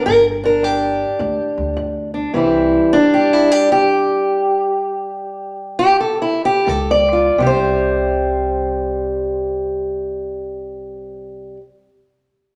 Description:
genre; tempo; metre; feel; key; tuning
acoustic country blues, solo or duo; 81-105 BPM; 4/4; swing 64% on 8ths; C major; A4 = 440 Hz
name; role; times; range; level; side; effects
fingerpicked steel-string acoustic guitar; melody; 0.0-11.6 s; G2 to D5; -17 LUFS; equal; none
upright bass; bass; 0.1-2.8, 6.7-11.5 s; G1 to D2; -29 LUFS; equal; none
room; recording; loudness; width
wet large studio reverb, RT60 1.3 s; none; -17 LUFS; mono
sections
0.0-7.4 A section; 7.4-10.3 B section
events
slowing down 2.3-7.4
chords
0.0 G5; 2.3 C; 6.7 Db; 7.4 C5

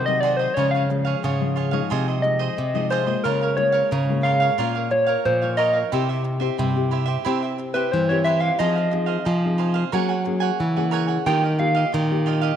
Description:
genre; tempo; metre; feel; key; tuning
samba; 90 BPM; 4/4; straight; F minor; A4 = 440 Hz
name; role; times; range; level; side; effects
soft struck synth lead; melody; 0.0-11.9 s; Bb4 to G5; -22 LUFS; equal; chorus
cavaquinho; accompaniment; 0.0-12.6 s; Eb4 to Ab5; -28 LUFS; right 11 dB; none
nylon-string guitar; accompaniment; 0.0-12.6 s; G2 to C5; -28 LUFS; left 10 dB; none
nylon-string guitar; bass; 0.0-12.5 s; Bb2 to C4; -23 LUFS; equal; none
room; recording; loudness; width
moderate plate reverb, RT60 2.7 s; 1960s-style stereo with parts hard left and right; -19 LUFS; side -9 dB against mid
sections
0.0-12.6 A section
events
soft synth lead solo 0.0-12.6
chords
0.0 Ab7; 0.6 Db; 1.9 Fm7/C; 3.2 Db6; 4.6 Bbmadd9; 5.9 C; 8.6 Fm7; 9.9 Gbadd9; 11.3 Ebadd9

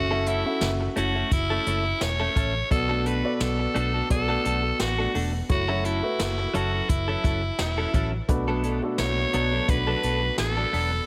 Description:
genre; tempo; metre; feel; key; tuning
1980s-style pop; 86 BPM; 4/4; swing 55% on 16ths; B minor; A4 = 441 Hz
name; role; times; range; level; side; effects
raspy alto saxophone; melody; 0.0-11.0 s; E4 to C#5; -30 LUFS; equal; none
warm grand piano; accompaniment; 0.0-11.1 s; B2 to E5; -33 LUFS; equal; none
vintage muted fingered electric bass; bass; 0.0-11.0 s; E1 to B1; -31 LUFS; equal; none
direct-recorded clean electric guitar; riff; 0.1-11.0 s; F#3 to A4; -34 LUFS; equal; lush chorus
jazz brush drum kit; drums; 0.3-10.9 s; hi-hat, kick drum, snare drum; -30 LUFS; equal; gated reverb
room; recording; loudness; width
light reverb, small room ambience; none; -25 LUFS; mono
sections
0.0-11.1 A section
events
none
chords
0.0 F#m7; 2.7 Bm7; 5.5 F#m7; 8.3 Bm7

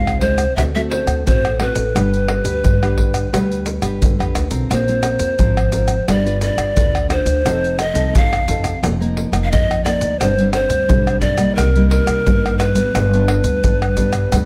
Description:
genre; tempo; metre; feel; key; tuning
samba and choro; 87 BPM; 4/4; straight; unclear; A4 = 440 Hz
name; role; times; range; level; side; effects
breathy hollow large pan pipes; melody; 0.0-14.5 s; Bb4 to F5; -22 LUFS; equal; none
nylon-string guitar; accompaniment; 0.0-14.5 s; G2 to B4; -24 LUFS; equal; none
upright bass; bass; 0.0-14.5 s; F1 to G2; -23 LUFS; equal; none
maracas, pandeiro, tamborim and surdo; percussion; 0.1-14.5 s; none; -22 LUFS; equal; none
room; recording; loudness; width
light reverb; none; -17 LUFS; mono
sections
0.0-14.5 A section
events
none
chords
0.0 Ab6; 0.6 D7; 1.9 G; 4.7 Bbsus2; 6.1 G7; 7.5 F7; 8.8 Bbsus4/F; 10.2 Gsus4; 11.6 Cm7; 13.0 G

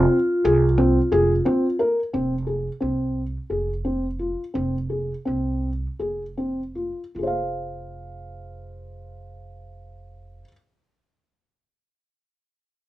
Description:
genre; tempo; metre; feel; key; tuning
contemporary instrumental, chamber music in an uneven meter; 152-178 BPM (eighths); 7/8; straight; F minor; A4 = 440 Hz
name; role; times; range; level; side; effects
vibraphone with medium mallets; second line; 0.0-1.7 s; F4; -21 LUFS; left 1 dB; none
felt-muted upright piano; arpeggios; 0.0-10.5 s; C4 to F5; -24 LUFS; left 1 dB; none
upright bass; bass; 0.0-10.4 s; F1 to C2; -27 LUFS; right 2 dB; none
frame drum; percussion; 0.8-1.8 s; none; -36 LUFS; left 1 dB; none
room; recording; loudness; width
light reverb; worn, warbling old tape, cassette tape, warbly pitch drift; -21 LUFS; side -16 dB against mid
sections
0.0-2.1 A section; 2.1-7.2 B section; 7.2-9.9 C section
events
slowing down 2.1-7.2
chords
0.0 Fm

